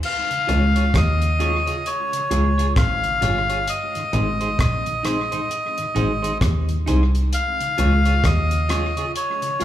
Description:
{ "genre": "roots reggae", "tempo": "66 BPM", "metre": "4/4", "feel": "swing 61% on 16ths", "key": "Db major", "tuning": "A4 = 441 Hz", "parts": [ { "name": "melodica", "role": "melody", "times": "0.0-9.6 s", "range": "Db5 to F5", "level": "-23 LUFS", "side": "left 1 dB", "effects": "tape echo, slapback echo" }, { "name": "damped 70s drum kit", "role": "drums", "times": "0.0-9.6 s", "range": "crash cymbal, hi-hat, kick drum, rim click", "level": "-26 LUFS", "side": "equal", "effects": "tape echo" }, { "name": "mellow tonewheel organ", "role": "accompaniment", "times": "0.3-9.6 s", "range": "Ab2 to F4", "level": "-32 LUFS", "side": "left 3 dB", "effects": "slow rotary speaker, tape echo, slapback echo" }, { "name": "semi-hollow electric guitar", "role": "accompaniment", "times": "0.5-9.6 s", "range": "Eb4 to Db5", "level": "-29 LUFS", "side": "right 4 dB", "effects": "lush chorus, tape echo, slapback echo" }, { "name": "clear double bass", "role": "bass", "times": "0.5-9.6 s", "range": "G1 to Eb2", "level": "-20 LUFS", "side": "equal", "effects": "none" } ], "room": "small room ambience", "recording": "live gig heard through the venue's PA, club reverb", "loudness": "-18 LUFS", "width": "side -12 dB against mid", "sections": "0.0-9.6 A section", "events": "none", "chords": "0.0 Db; 3.7 Ab; 7.3 Db", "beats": "| 0.03 0.94 1.85 2.76 | 3.67 4.59 5.50 6.41 | 7.32 8.23 9.15" }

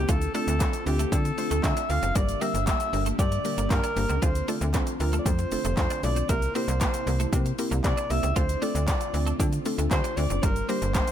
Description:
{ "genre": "dance-pop", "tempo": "116 BPM", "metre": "4/4", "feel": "straight", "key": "D minor", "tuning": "A4 = 437 Hz", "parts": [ { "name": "breathy alto saxophone", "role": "melody", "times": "0.0-11.1 s", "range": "G4 to F5", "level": "-30 LUFS", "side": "equal", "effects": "ping-pong delay" }, { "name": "string machine, cellos", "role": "sustained chords", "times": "0.0-11.1 s", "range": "C3 to G4", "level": "-34 LUFS", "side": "equal", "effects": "ensemble chorus, sidechain pumping" }, { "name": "twelve-string electric guitar", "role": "riff", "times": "0.0-11.1 s", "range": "G3 to F4", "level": "-38 LUFS", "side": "right 5 dB", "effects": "ensemble chorus" }, { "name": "slap-like FM bass", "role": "bass", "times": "0.0-11.0 s", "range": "F1 to D3", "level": "-27 LUFS", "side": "equal", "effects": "sidechain pumping" }, { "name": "mallet-like synth pluck", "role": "accompaniment", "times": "0.1-11.1 s", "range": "G3 to C5", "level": "-33 LUFS", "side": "left 2 dB", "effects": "chorus, sidechain pumping" }, { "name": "deep house drum kit", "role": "drums", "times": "0.1-11.1 s", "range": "handclaps, hi-hat, kick drum, shaker", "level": "-28 LUFS", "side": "equal", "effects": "none" } ], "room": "little or no reverb", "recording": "none", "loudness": "-23 LUFS", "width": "side -10 dB against mid", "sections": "0.0-11.1 A section", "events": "none", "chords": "0.1 Dm7; 2.2 Gm; 4.2 Dm7; 6.3 C7; 8.4 Dm7; 10.4 Gm", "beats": "| 0.09 0.60 1.12 1.64 | 2.15 2.67 3.19 3.71 | 4.22 4.74 5.26 5.78 | 6.29 6.81 7.33 7.84 | 8.36 8.88 9.40 9.91 | 10.43 10.95" }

